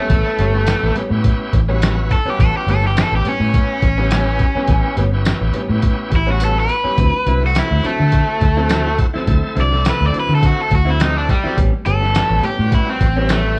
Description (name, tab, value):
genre	straight-eighth soul blues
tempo	104 BPM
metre	4/4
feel	swing 55% on 16ths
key	A mixolydian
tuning	A4 = 436 Hz
part	overdriven electric guitar	melody	0.0-13.6 s	G3 to D5	-22 LUFS	equal	none
part	bright tonewheel organ	accompaniment	0.0-13.6 s	G3 to A4	-29 LUFS	equal	overdrive, fast rotary speaker
part	direct-recorded clean electric guitar	stabs	0.0-13.5 s	A2 to E4	-28 LUFS	equal	none
part	vintage muted fingered electric bass	bass	0.1-13.6 s	G1 to D3	-20 LUFS	equal	none
part	lo-fi sampler-style drum kit	drums	0.1-13.4 s	hi-hat, kick drum, snare drum, tambourine	-20 LUFS	equal	none
room	light reverb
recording	band playing live in one room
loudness	-16 LUFS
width	mono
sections	0.0-13.6 A section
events	overdriven electric guitar solo 0.0-13.6; kick and snare drop out 6.4-7.0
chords	0.0 A9; 7.0 D9; 11.6 A9